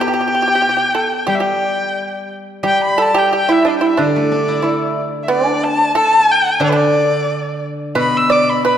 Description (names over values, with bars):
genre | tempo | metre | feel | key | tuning
chinese traditional, Chinese chamber ensemble | 91 BPM | 2/4 | rubato | G gong mode | A4 = 440 Hz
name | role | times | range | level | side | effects
rich erhu | melody | 0.0-8.8 s | B4 to E6 | -16 LUFS | left 1 dB | none
pipa | second line | 0.0-8.8 s | D4 to D5 | -18 LUFS | right 3 dB | none
steel-string zither | accompaniment | 0.0-8.8 s | B2 to A4 | -20 LUFS | left 2 dB | none
room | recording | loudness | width
wet concert hall reverb, RT60 2.0 s | dark, warm production | -13 LUFS | side -9 dB against mid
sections
0.0-2.7 A section; 2.7-8.8 B section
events
none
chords
none